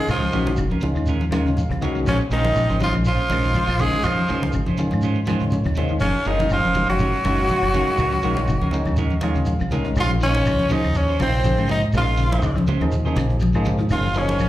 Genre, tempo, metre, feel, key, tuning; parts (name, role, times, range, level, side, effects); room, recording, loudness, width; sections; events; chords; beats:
afrobeat; 122 BPM; 4/4; swing 54% on 16ths; Bb minor; A4 = 444 Hz
raspy tenor saxophone; melody; 0.0-14.5 s; C4 to Ab4; -23 LUFS; equal; plate reverb, slapback echo
raspy alto saxophone; second line; 0.0-14.5 s; Db3 to F5; -29 LUFS; right 2 dB; plate reverb, slapback echo
barky tine electric piano; accompaniment; 0.0-14.5 s; Eb3 to Bb5; -27 LUFS; left 2 dB; auto-pan, plate reverb, slapback echo
semi-hollow electric guitar; arpeggios; 0.0-14.5 s; C3 to Gb3; -28 LUFS; left 4 dB; ensemble chorus, plate reverb
clean electric guitar; stabs; 0.1-14.4 s; Ab3 to C5; -30 LUFS; right 6 dB; plate reverb, slapback echo
deep dub fingered electric bass; bass; 0.1-14.5 s; F1 to Ab2; -22 LUFS; equal
cajon; drums; 0.1-14.5 s; -33 LUFS; equal
claves; percussion; 0.1-14.5 s; -41 LUFS; left 3 dB
congas; percussion; 0.1-14.5 s; -28 LUFS; equal
shekere; percussion; 0.1-14.5 s; -30 LUFS; equal
light reverb; live gig heard through the venue's PA, club reverb; -18 LUFS; side -14 dB against mid
0.0-10.0 A section; 10.0-14.5 B section
tine electric piano fill 1.1-2.1, 5.0-6.0, 8.5-10.0; drum fill 9.5-10.0
0.0 Gbmaj9; 2.1 Bbm9; 6.0 Gbmaj9; 10.0 Bbm9; 13.9 Gbmaj9
| 0.09 0.58 1.08 1.57 | 2.07 2.56 3.06 3.55 | 4.04 4.54 5.03 5.52 | 6.02 6.51 7.00 7.50 | 7.99 8.49 8.98 9.47 | 9.97 10.46 10.96 11.45 | 11.94 12.44 12.93 13.42 | 13.92 14.41